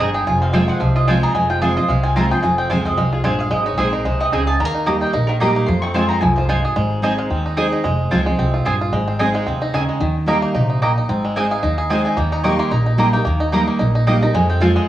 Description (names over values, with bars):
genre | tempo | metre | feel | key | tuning
bluegrass | 222 BPM | 4/4 | swing 56% on 8ths | F minor | A4 = 440 Hz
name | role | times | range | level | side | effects
bluegrass banjo | melody | 0.0-14.9 s | Eb3 to Ab4 | -23 LUFS | right 2 dB | cassette tape, tape echo
mandolin | melody | 0.0-14.9 s | Ab4 to Db6 | -23 LUFS | left 1 dB | cassette tape
picked steel-string acoustic guitar | accompaniment | 0.0-14.9 s | F2 to Ab4 | -20 LUFS | equal | cassette tape
mandolin | stabs | 0.0-14.7 s | Bb3 to Bb5 | -24 LUFS | right 2 dB | cassette tape
upright bass | bass | 0.0-14.8 s | F1 to F2 | -21 LUFS | equal | none
room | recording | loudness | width
light reverb, small room ambience | home recording on cassette | -15 LUFS | side -13 dB against mid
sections
0.0-6.8 A section; 6.8-14.9 A section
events
mandolin solo 0.0-14.9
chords
0.3 Fm; 3.5 Ab; 4.6 Eb; 5.7 Fm; 6.8 Ab; 7.8 Fm; 8.9 Ab; 10.0 Eb; 11.1 Ab; 12.2 Eb; 14.3 Fm